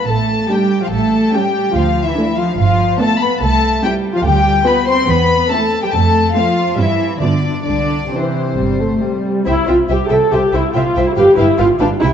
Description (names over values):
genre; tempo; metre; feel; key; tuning
quick classical-period movement for string orchestra; 142 BPM; 4/4; rubato; C major; A4 = 440 Hz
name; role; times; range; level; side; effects
clear studio violin section; melody; 0.0-12.1 s; C5 to C6; -20 LUFS; left 4 dB; none
warm symphonic violin section; second line; 0.0-12.1 s; C4 to F5; -20 LUFS; left 3 dB; none
rich symphonic double bass section; bass; 0.1-12.1 s; G1 to G2; -19 LUFS; right 3 dB; none
warm symphonic cello section; bass; 0.1-12.1 s; G2 to C4; -20 LUFS; right 2 dB; none
dark studio viola section; accompaniment; 0.5-12.1 s; E3 to A4; -16 LUFS; equal; none
room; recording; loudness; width
wet concert hall reverb, RT60 2.2 s; dark, warm production, nothing above 7.9 kHz; -12 LUFS; side -8 dB against mid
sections
0.0-9.5 A section; 9.5-12.1 B section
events
none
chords
0.0 D5; 0.9 A7; 1.8 Dm; 2.6 G7; 3.4 C; 4.3 G7/D; 5.1 C/E; 5.9 F; 6.8 C/G; 7.2 G7; 7.7 C; 11.2 G7